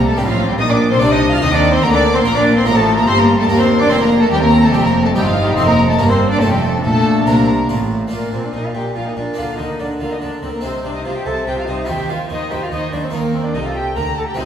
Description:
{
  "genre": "classical, baroque-style concerto movement with solo episodes",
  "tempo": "144 BPM",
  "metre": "3/4",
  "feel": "straight",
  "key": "Bb major from 3.1 s",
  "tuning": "A4 = 440 Hz",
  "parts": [
    { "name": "rich chamber violin section", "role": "melody", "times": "0.0-14.5 s", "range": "D5 to F6", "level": "-22 LUFS", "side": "left 2 dB", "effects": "none" },
    { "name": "warm cello", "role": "melody", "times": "0.0-14.5 s", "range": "F3 to Bb4", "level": "-19 LUFS", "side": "left 1 dB", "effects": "none" },
    { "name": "rich chamber violin section", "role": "second line", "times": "0.0-14.5 s", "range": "F4 to Bb5", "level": "-21 LUFS", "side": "left 1 dB", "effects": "none" },
    { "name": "dark chamber viola section", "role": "accompaniment", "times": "0.0-14.5 s", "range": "F3 to C5", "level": "-22 LUFS", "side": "equal", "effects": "none" },
    { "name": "harpsichord", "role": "accompaniment", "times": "0.0-14.5 s", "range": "Eb2 to F4", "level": "-25 LUFS", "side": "right 1 dB", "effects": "none" },
    { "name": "rich chamber double bass section", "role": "bass", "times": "0.0-14.5 s", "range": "F1 to Eb2", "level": "-22 LUFS", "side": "right 2 dB", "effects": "none" },
    { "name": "warm studio cello section", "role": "bass", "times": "0.0-14.5 s", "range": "Eb2 to Eb3", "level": "-22 LUFS", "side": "right 1 dB", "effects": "none" }
  ],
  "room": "wet recital hall reverb, RT60 1.5 s",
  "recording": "heard from further back in the room",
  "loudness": "-13 LUFS",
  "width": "side -9 dB against mid",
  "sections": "0.0-8.1 A section; 8.1-14.5 B section",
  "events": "none",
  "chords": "0.0 Gm; 0.6 Bb; 3.1 Gm; 4.3 Cm; 5.6 F7; 6.0 Gm; 6.4 F7; 6.8 Bb; 9.4 Bb/D; 10.6 Cm; 11.9 Cm/Eb; 13.1 Eb"
}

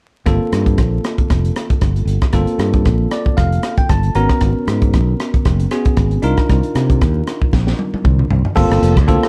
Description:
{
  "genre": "electric jazz fusion",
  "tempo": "116 BPM",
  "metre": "4/4",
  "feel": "swing 55% on 16ths",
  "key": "G minor",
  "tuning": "A4 = 440 Hz",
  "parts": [
    { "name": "bell-like tine electric piano", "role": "accompaniment", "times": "0.3-9.3 s", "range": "Bb3 to Bb5", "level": "-22 LUFS", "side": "equal", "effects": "none" },
    { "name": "fingered electric bass", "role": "bass", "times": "0.3-9.2 s", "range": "F1 to C3", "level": "-18 LUFS", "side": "equal", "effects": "none" },
    { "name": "crisp fusion drum kit", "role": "drums", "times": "0.3-9.3 s", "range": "crash cymbal, hi-hat, kick drum, rim click, snare drum, toms", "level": "-19 LUFS", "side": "equal", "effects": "none" }
  ],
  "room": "light reverb",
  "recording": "dark, warm production, vinyl crackle",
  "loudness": "-16 LUFS",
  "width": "mono",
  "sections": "0.3-8.6 A section",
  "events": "tine electric piano fill 2.9-4.4; drum fill 7.5-8.6",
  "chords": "0.3 Gm11; 4.2 Abm11; 6.2 Cm11; 8.6 Gm11"
}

